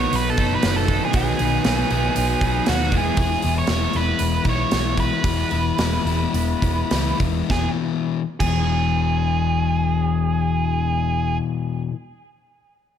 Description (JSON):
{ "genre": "classic rock", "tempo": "99-119 BPM", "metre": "4/4", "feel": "straight", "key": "E major", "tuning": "A4 = 435 Hz", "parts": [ { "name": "octave-fuzz lead guitar", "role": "melody", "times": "0.0-11.4 s", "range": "F#4 to C#5", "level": "-25 LUFS", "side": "right 5 dB", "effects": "distortion, analog delay" }, { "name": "crunchy overdriven guitar", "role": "riff", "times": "0.0-11.9 s", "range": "E2 to E4", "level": "-23 LUFS", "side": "left 9 dB", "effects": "none" }, { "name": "crunchy overdriven guitar", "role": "riff", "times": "0.0-3.2 s", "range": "B2 to B4", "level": "-26 LUFS", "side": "right 10 dB", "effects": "none" }, { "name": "picked electric bass", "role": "bass", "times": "0.0-11.4 s", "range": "E1 to D#2", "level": "-24 LUFS", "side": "right 1 dB", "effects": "none" }, { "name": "big rock drum kit", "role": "drums", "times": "0.1-8.6 s", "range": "crash cymbal, hi-hat, kick drum, snare drum", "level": "-25 LUFS", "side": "right 1 dB", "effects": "none" } ], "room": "light reverb, studio reverb", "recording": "none", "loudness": "-18 LUFS", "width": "side -9 dB against mid", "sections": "0.0-7.5 A section; 7.5-12.3 B section", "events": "slowing down 3.2-7.5", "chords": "0.0 B; 2.9 E" }